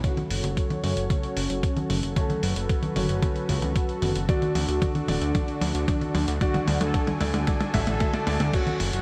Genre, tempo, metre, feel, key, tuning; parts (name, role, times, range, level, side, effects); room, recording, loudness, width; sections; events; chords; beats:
italo disco; 113 BPM; 4/4; straight; F# minor; A4 = 440 Hz
analog synth brass; melody; 0.0-9.0 s; C#4 to A4; -34 LUFS; equal; chorus, digital delay
warm analog pad; sustained chords; 0.0-9.0 s; D3 to G#5; -34 LUFS; equal; chorus
warm grand piano; stabs; 0.0-9.0 s; D3 to E5; -37 LUFS; equal; low-pass filter
dusty soul sampler-style drum kit; drums; 0.0-9.0 s; congas, crash cymbal, hi-hat, toms; -31 LUFS; equal; studio reverb
electronic kick drum; drums; 0.0-8.6 s; -28 LUFS; equal; studio reverb
fat analog bass; bass; 0.3-9.0 s; D1 to F#2; -30 LUFS; equal
moderate lush hall reverb, RT60 2.8 s; bright 1980s-style digital production, vinyl crackle; -25 LUFS; mono
0.0-8.5 A section
drum fill 0.0-8.5; filter sweep on grand piano 0.0-8.5; filter sweep on analog polysynth 0.0-8.5
0.0 F#m; 4.3 D
| 0.04 0.57 1.10 1.63 | 2.16 2.69 3.23 3.76 | 4.29 4.82 5.35 5.88 | 6.41 6.94 7.47 8.00 | 8.54